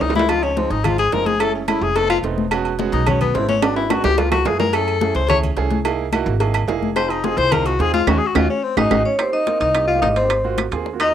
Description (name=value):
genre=Afro-Cuban jazz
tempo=216 BPM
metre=4/4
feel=straight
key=Db major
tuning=A4 = 440 Hz
part: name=warm tenor saxophone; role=second line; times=0.0-11.1 s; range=B3 to Db5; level=-20 LUFS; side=left 6 dB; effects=none
part: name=upright bass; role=bass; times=0.0-11.1 s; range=Fb1 to Gb2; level=-23 LUFS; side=right 1 dB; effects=none
part: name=congas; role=percussion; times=0.0-11.1 s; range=none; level=-25 LUFS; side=left 6 dB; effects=none
part: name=timbales and agogo bells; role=percussion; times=0.0-11.1 s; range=none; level=-25 LUFS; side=right 8 dB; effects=none
part: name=warm baby grand piano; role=accompaniment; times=0.1-11.1 s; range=F3 to Bb4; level=-24 LUFS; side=right 9 dB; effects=none
part: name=bongos and cowbell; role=percussion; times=0.2-11.1 s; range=none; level=-29 LUFS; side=left 8 dB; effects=none
part: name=claves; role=percussion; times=0.3-11.1 s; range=none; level=-27 LUFS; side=right 9 dB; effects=none
part: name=vibraphone with medium hard mallets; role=melody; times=8.8-11.1 s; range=C5 to F5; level=-18 LUFS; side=right 1 dB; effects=cassette tape
room=moderate small room reverb, RT60 0.5 s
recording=home recording on cassette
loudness=-16 LUFS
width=side -10 dB against mid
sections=0.3-9.2 A section; 9.2-11.1 B section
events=drum fill 0.0, 3.6-4.7, 8.5-9.2; tenor saxophone solo 0.0-9.2; band accent 8.1-9.2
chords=0.3 Dbmaj9; 1.4 Gbm7; 2.0 F7#11; 2.5 E69; 3.6 Abm7b5; 4.2 Db7b13; 4.7 Gbm9; 5.9 C7alt; 7.0 Fm7; 8.1 Ebm7; 8.6 Ab5; 9.2 Abmaj9; 10.3 Ab13